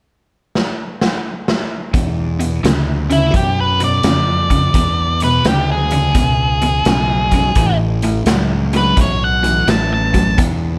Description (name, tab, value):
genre	blues rock power trio and southern rock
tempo	85 BPM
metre	4/4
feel	swing 66% on 8ths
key	E mixolydian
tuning	A4 = 440 Hz
part	raw garage drum kit	drums	0.6-10.6 s	hi-hat, kick drum, snare drum	-21 LUFS	equal	none
part	biting overdriven guitar	riff	1.9-10.8 s	E2 to F#3	-22 LUFS	equal	none
part	fuzz fingered electric bass	bass	1.9-10.8 s	A1 to F#2	-21 LUFS	equal	overdrive
part	octave-fuzz lead guitar	melody	3.1-10.4 s	E4 to A5	-20 LUFS	equal	distortion
room	light reverb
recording	none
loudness	-15 LUFS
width	mono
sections	0.0-1.9 A section; 1.9-10.8 B section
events	drum fill 0.5-1.9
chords	0.0 N.C.; 1.9 E7; 7.6 A